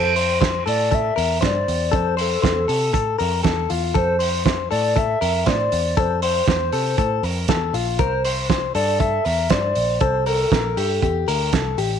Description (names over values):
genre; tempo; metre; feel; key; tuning
jangly indie pop; 119 BPM; 4/4; straight; F major; A4 = 440 Hz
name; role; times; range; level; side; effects
warbly nostalgic lead; melody; 0.0-11.8 s; A4 to E5; -23 LUFS; right 1 dB; chorus, slapback echo
direct-recorded clean electric guitar; arpeggios; 0.0-12.0 s; F4 to C5; -23 LUFS; left 11 dB; slapback echo
vintage muted picked electric bass; bass; 0.0-12.0 s; A1 to C3; -25 LUFS; right 1 dB; none
cloth-damped thuddy drum kit; drums; 0.2-11.9 s; hi-hat, kick drum, snare drum; -22 LUFS; right 5 dB; none
room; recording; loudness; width
light reverb; 1960s-style stereo; -18 LUFS; side -8 dB against mid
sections
0.0-12.0 A section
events
none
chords
0.0 Fmaj7; 8.0 C7(no3)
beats
0.41 0.92 1.43 | 1.93 2.44 2.94 3.45 | 3.95 4.46 4.96 5.47 | 5.97 6.48 6.99 7.49 | 8.00 8.50 9.01 9.51 | 10.02 10.52 11.03 11.53